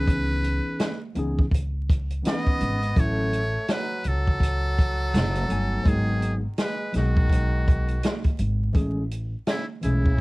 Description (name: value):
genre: hip hop, jazz-hop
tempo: 83 BPM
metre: 4/4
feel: swing 60% on 16ths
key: C# minor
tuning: A4 = 440 Hz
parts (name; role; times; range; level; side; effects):
- trumpet with metal mute; melody; 0.0-10.2 s; E4 to D#5; -30 LUFS; equal; none
- barky tine electric piano; accompaniment; 0.0-10.1 s; E3 to G#5; -29 LUFS; left 1 dB; medium stereo tremolo
- upright bass; bass; 0.0-10.2 s; F#1 to C#2; -25 LUFS; equal; none
- open jazz drum kit; drums; 0.1-10.2 s; hi-hat, kick drum, snare drum; -23 LUFS; equal; none
- brilliant trombone; second line; 2.2-10.2 s; C#3 to B3; -34 LUFS; right 1 dB; tape echo
room: little or no reverb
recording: home recording on cassette, vinyl crackle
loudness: -22 LUFS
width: side -23 dB against mid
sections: 0.0-10.2 A section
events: none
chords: 0.0 C#m9; 3.0 A6; 5.1 F#m; 5.9 G#m7; 8.8 Amaj7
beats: | 0.08 0.80 1.52 2.25 | 2.97 3.69 4.41 5.14 | 5.86 6.58 7.30 8.03 | 8.75 9.47 10.20